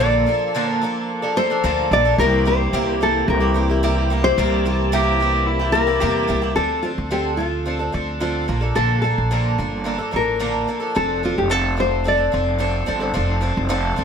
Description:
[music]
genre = acoustic pop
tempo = 109 BPM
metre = 4/4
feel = straight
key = F major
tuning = A4 = 440 Hz
[part]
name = nylon-string guitar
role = melody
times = 0.0-14.0 s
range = F4 to D5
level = -21 LUFS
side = left 2 dB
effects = none
[part]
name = picked twelve-string acoustic guitar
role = accompaniment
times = 0.0-14.0 s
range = Bb2 to A4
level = -22 LUFS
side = right 1 dB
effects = none
[part]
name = tonewheel organ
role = sustained chords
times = 0.0-6.5 s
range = E3 to A5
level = -28 LUFS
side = right 1 dB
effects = overdrive, chorus vibrato, slow rotary speaker
[part]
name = upright bass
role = bass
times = 0.0-14.0 s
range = F1 to E2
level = -22 LUFS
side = equal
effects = none
[part]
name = warm cello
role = second line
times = 4.9-6.6 s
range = E4 to G4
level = -23 LUFS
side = right 1 dB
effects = none
[sound]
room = moderate studio reverb, RT60 0.9 s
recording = none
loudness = -17 LUFS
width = side -7 dB against mid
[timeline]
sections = 0.0-6.6 A section; 6.6-14.0 B section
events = none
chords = 0.0 Bbmaj7; 2.2 C7; 6.6 Dm7; 8.5 Bbmaj7; 11.0 F6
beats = 0.54 1.09 1.64 | 2.18 2.73 3.28 3.83 | 4.37 4.92 5.47 6.02 | 6.57 7.11 7.66 8.21 | 8.76 9.31 9.86 10.41 | 10.96 11.51 12.06 12.61 | 13.15 13.70

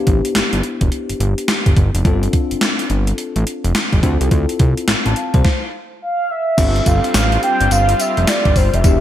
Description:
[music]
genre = R&B, new jack swing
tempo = 106 BPM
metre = 4/4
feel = swing 63% on 16ths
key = unclear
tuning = A4 = 439 Hz
[part]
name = bell-like tine electric piano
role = accompaniment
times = 0.0-9.0 s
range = B3 to A5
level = -23 LUFS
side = left 4 dB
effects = wide subtle chorus
[part]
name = fat analog bass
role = bass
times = 0.1-9.0 s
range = E1 to D2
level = -17 LUFS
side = equal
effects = none
[part]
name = gated 80s digital drum machine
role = drums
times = 0.1-9.0 s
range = crash cymbal, handclaps, hi-hat, kick drum, snare drum, tambourine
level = -16 LUFS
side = equal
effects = gated reverb, gated reverb snare, overdrive
[part]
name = mellow horn-like synth lead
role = melody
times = 6.0-9.0 s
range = C5 to G5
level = -17 LUFS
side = right 1 dB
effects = chorus
[part]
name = lush unison pad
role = sustained chords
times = 6.6-9.0 s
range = E3 to G4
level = -23 LUFS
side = equal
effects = chorus
[sound]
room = light reverb, digital ambience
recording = bright 1980s-style digital production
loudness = -14 LUFS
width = side -12 dB against mid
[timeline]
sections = 0.0-6.6 A section; 6.6-9.0 B section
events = stop 5.4-6.6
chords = 0.0 Em7; 2.0 G7sus4; 4.0 Dm7; 6.6 G7sus4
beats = 0.35 0.92 1.48 | 2.05 2.62 3.18 3.75 | 4.31 4.88 5.45 6.01 | 6.58 7.14 7.71 8.28 | 8.84

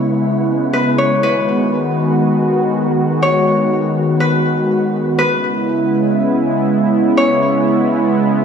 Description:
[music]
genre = hip hop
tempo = 121 BPM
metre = 4/4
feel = half-time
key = C# minor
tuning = A4 = 440 Hz
[part]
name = Celtic harp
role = melody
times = 0.0-8.4 s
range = B4 to C#5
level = -19 LUFS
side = left 2 dB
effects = ping-pong delay
[part]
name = warm analog pad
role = sustained chords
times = 0.0-8.4 s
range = C#3 to F#4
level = -14 LUFS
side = equal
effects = chorus
[part]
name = wind-like tuned noise texture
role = texture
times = 0.0-5.2 s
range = G#3 to B4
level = -25 LUFS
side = equal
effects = built-in reverb
[sound]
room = light reverb, digital ambience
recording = played on a big sound system in a bare room, stone room reverb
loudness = -13 LUFS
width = side -7 dB against mid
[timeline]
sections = 0.0-5.2 A section; 5.2-8.4 B section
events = none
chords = 0.0 C#m7; 1.2 G#m7; 5.2 C#m7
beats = 0.23 0.73 | 1.23 1.72 2.22 2.71 | 3.21 3.71 4.20 4.70 | 5.19 5.69 6.18 6.68 | 7.18 7.67 8.17

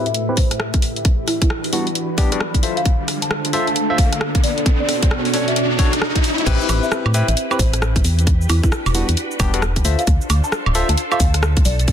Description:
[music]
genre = UK garage, two-step garage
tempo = 133 BPM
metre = 4/4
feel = swing 62% on 16ths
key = A minor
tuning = A4 = 440 Hz
[part]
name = soft string machine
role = sustained chords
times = 0.0-11.9 s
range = A2 to C#5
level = -27 LUFS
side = equal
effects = ensemble chorus, sidechain pumping
[part]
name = barky tine electric piano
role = stabs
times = 0.0-11.2 s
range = G3 to E5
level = -24 LUFS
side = moving between left 9 dB and right 3 dB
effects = auto-pan, low-pass filter, dub echo
[part]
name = riser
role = sound effects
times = 1.0-6.5 s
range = none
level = -26 LUFS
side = equal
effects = none
[part]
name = warbly tape-like pad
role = texture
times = 0.0-6.5 s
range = B3 to B5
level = -27 LUFS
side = right 2 dB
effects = chorus, built-in reverb, sidechain pumping
[part]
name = buzzing marimba with soft mallets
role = melody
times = 0.1-11.8 s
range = E4 to A5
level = -26 LUFS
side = equal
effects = low-pass filter, dub echo
[part]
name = garage drum kit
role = drums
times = 0.1-11.9 s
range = cabasa, crash cymbal, hi-hat, rim click, woodblock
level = -23 LUFS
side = equal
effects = none
[part]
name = electronic kick drum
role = drums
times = 0.4-11.9 s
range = none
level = -17 LUFS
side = equal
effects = none
[part]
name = organ-like FM bass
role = bass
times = 6.5-11.9 s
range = D1 to A2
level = -17 LUFS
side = equal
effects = none
[sound]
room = light reverb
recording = dense, heavily limited modern master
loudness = -15 LUFS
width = side -9 dB against mid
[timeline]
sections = 0.0-6.5 A section; 6.5-11.9 B section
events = build-up 0.0-6.5; filter sweep on tine electric piano 0.0-6.5; filter sweep on marimba 0.0-6.5; filter sweep on string machine 0.0-6.5; riser 1.0-6.5; drop 6.5-11.9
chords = 0.0 A7(no3); 1.1 Em7; 2.6 Dm7; 4.4 Bm7; 6.5 Am7; 8.3 Em7; 9.8 Dm7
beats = 0.15 0.60 | 1.05 1.50 1.95 2.40 | 2.86 3.31 3.76 4.21 | 4.66 5.11 5.56 6.01 | 6.46 6.92 7.37 7.82 | 8.27 8.72 9.17 9.62 | 10.07 10.53 10.98 11.43 | 11.88

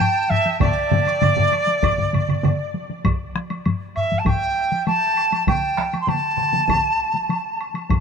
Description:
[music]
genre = japanese traditional, taiko drum ensemble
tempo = 99 BPM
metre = 4/4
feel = straight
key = D suspended pentatonic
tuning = A4 = 441 Hz
[part]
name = bright reedy dizi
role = melody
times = 0.0-7.6 s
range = D5 to C6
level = -20 LUFS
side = right 1 dB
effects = none
[part]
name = solo taiko drums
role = percussion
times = 0.0-8.0 s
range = none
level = -24 LUFS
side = left 5 dB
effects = none
[part]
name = taiko ensemble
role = percussion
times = 0.0-8.0 s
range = none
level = -27 LUFS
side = left 2 dB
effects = none
[part]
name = woodblock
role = percussion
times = 0.0-8.0 s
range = none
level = -32 LUFS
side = equal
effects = none
[part]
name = taiko ensemble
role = percussion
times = 0.6-6.8 s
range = none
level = -24 LUFS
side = right 2 dB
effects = none
[part]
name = taiko ensemble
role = percussion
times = 0.6-8.0 s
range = none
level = -24 LUFS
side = equal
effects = none
[sound]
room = moderate huge ambient reverb, RT60 4.6 s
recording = minimal, uncompressed stereo recording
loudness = -18 LUFS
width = side -6 dB against mid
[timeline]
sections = 0.0-3.1 A section; 3.1-8.0 B section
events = none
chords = none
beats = 0.00 | 0.61 1.22 1.83 2.44 | 3.05 3.66 4.27 4.88 | 5.48 6.09 6.69 7.30 | 7.90

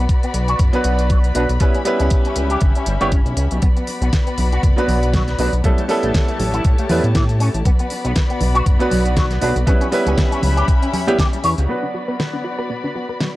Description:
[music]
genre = nu-disco, nu disco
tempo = 119 BPM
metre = 4/4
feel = swing 56% on 16ths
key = B minor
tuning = A4 = 441 Hz
[part]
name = dark chamber violin section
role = sustained chords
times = 0.0-13.4 s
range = A3 to B5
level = -26 LUFS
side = left 3 dB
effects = sidechain pumping, low-pass filter
[part]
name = electric guitar with an envelope filter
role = riff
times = 0.0-13.3 s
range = E3 to C#5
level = -24 LUFS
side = left 1 dB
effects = ensemble chorus, low-pass filter, tape echo
[part]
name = chorused synth bass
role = bass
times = 0.0-11.7 s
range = F#1 to A2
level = -18 LUFS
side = equal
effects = none
[part]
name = electronic kick drum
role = drums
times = 0.1-11.3 s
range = none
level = -16 LUFS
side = equal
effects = none
[part]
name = pop drum kit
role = drums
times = 0.1-13.3 s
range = hi-hat, snare drum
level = -26 LUFS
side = equal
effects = none
[part]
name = bright baby grand piano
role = accompaniment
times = 0.7-13.4 s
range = F#3 to B4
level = -21 LUFS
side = right 2 dB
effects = sidechain pumping, low-pass filter, tape echo
[part]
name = congas and bongos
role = percussion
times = 3.6-11.2 s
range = none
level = -27 LUFS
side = right 2 dB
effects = none
[part]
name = analog pluck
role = arpeggios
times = 11.7-13.3 s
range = B3 to B4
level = -28 LUFS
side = equal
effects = chorus, sidechain pumping, analog delay
[sound]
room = small room ambience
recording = dry, gritty hardware recording, cassette tape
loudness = -15 LUFS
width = side -17 dB against mid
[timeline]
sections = 0.0-11.7 A section; 11.7-13.4 B section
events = filter sweep on grand piano 11.7-13.4; filter sweep on synth arpeggio sound 11.7-13.4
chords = 0.0 Bm; 1.6 C#m7b5; 3.6 Bm; 5.6 A7; 7.7 Bm; 9.7 C#m7b5; 11.7 Bm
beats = 0.09 0.60 1.10 | 1.60 2.11 2.61 3.12 | 3.62 4.13 4.63 5.13 | 5.64 6.14 6.65 7.15 | 7.66 8.16 8.66 9.17 | 9.67 10.18 10.68 11.19 | 11.69 12.19 12.70 13.20

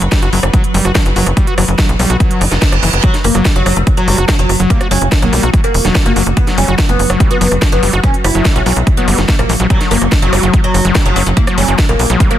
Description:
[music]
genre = psychedelic trance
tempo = 144 BPM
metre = 4/4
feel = straight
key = unclear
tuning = A4 = 436 Hz
[part]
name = evolving wavetable pad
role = sustained chords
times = 0.0-12.4 s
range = F#3 to B4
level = -22 LUFS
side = right 2 dB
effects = chorus, built-in reverb, sidechain pumping
[part]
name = tight sequencer bass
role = bass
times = 0.0-12.2 s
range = E1 to B1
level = -14 LUFS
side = equal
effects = none
[part]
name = techno drum kit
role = drums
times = 0.0-12.4 s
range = hi-hat, rim click, snare drum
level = -18 LUFS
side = equal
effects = overdrive
[part]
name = overdriven acid bass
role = riff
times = 0.1-12.4 s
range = E3 to F#4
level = -19 LUFS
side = left 1 dB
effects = distortion, auto-pan, vintage 12-bit sampler grit, sidechain pumping, dub echo
[part]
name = electronic kick drum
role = drums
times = 0.1-12.3 s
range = none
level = -12 LUFS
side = equal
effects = overdrive
[part]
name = reverse cymbal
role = sound effects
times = 2.4-3.0 s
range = none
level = -20 LUFS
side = right 6 dB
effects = none
[part]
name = oud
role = melody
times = 3.0-12.4 s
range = F#3 to E4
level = -18 LUFS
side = equal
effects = phaser, sidechain pumping, digital delay
[part]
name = resonant blip pluck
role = second line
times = 3.8-5.8, 10.4-12.4 s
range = F#3 to F#4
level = -28 LUFS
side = left 5 dB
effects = none
[sound]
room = little or no reverb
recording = dense, heavily limited modern master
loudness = -9 LUFS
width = side -12 dB against mid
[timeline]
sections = 0.0-12.4 A section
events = reverse cymbal 2.4-3.0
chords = 0.0 Emadd9 (rootless)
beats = 0.12 0.54 0.95 | 1.37 1.79 2.20 2.62 | 3.04 3.45 3.87 4.29 | 4.70 5.12 5.54 5.95 | 6.37 6.79 7.20 7.62 | 8.04 8.45 8.87 9.29 | 9.70 10.12 10.54 10.95 | 11.37 11.79 12.20

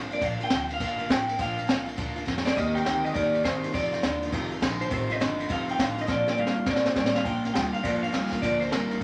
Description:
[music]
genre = rockabilly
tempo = 205 BPM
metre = 4/4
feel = swing 65% on 8ths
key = Bb major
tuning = A4 = 441 Hz
[part]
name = picked steel-string acoustic guitar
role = accompaniment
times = 0.0-9.0 s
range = F2 to G4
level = -37 LUFS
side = equal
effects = none
[part]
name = upright bass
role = bass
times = 0.0-9.0 s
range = F1 to G2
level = -40 LUFS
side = equal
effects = none
[part]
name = electric guitar through a small old amp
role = melody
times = 0.1-9.0 s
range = Bb4 to G5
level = -31 LUFS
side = equal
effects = none
[part]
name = jazz brush drum kit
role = drums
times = 0.1-9.0 s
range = kick drum, ride cymbal, snare drum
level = -31 LUFS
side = equal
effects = none
[part]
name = electric guitar through a small old amp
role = riff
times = 2.6-9.0 s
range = F2 to C4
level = -33 LUFS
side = equal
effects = none
[sound]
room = moderate large studio reverb, RT60 1.3 s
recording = none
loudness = -27 LUFS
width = mono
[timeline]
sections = 0.0-7.3 A section; 7.3-9.0 B section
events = drum fill 2.3, 6.1-7.3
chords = 0.0 Bb; 2.6 Eb; 3.7 F7; 6.1 Bb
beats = | 0.22 0.51 0.81 1.10 | 1.39 1.69 1.98 2.27 | 2.57 2.86 3.15 3.45 | 3.74 4.04 4.33 4.62 | 4.92 5.21 5.50 5.79 | 6.09 6.38 6.67 6.97 | 7.26 7.55 7.85 8.14 | 8.43 8.72 9.02

